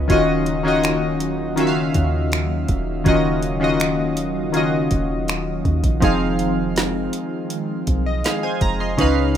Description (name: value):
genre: contemporary R&B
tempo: 81 BPM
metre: 4/4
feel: straight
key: unclear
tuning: A4 = 442 Hz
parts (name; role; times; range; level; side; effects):
- warm analog keys; accompaniment; 0.0-9.4 s; Db3 to C6; -19 LUFS; left 1 dB; chorus
- hollow soft pad; sustained chords; 0.0-9.4 s; Db3 to F5; -30 LUFS; right 2 dB; ensemble chorus, tremolo
- soft 808-style bass; bass; 0.0-9.4 s; Eb1 to Eb2; -25 LUFS; right 1 dB; none
- smooth R&B drum kit; drums; 0.1-9.4 s; finger snaps, hi-hat, kick drum, snare drum; -22 LUFS; right 1 dB; none
room: little or no reverb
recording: rough home demo mix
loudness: -18 LUFS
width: side -9 dB against mid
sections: 0.0-6.0 A section; 6.0-9.4 B section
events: none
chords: 0.1 Ebm7; 6.0 Fm7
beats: | 0.10 0.84 1.58 2.32 | 3.06 3.80 4.54 5.28 | 6.02 6.76 7.50 8.24 | 8.99